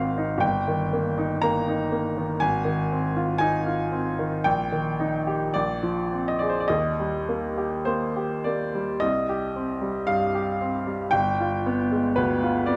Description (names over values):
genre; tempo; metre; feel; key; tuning
classical, romantic character piece for solo piano; 50-61 BPM; 2/4; rubato; Eb major, C minor from 9.0 s; A4 = 440 Hz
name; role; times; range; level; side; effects
bright baby grand piano; solo; 0.0-12.8 s; G1 to Bb5; -25 LUFS; equal; none
room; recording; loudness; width
moderate recital hall reverb, RT60 1.5 s; none; -25 LUFS; mono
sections
0.0-9.0 A section; 9.0-12.8 B section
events
none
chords
0.4 Eb/G; 2.4 Fm7/Ab; 4.5 Eb/Bb; 5.6 Bb9; 6.7 Eb; 9.0 Cm; 11.1 G7b9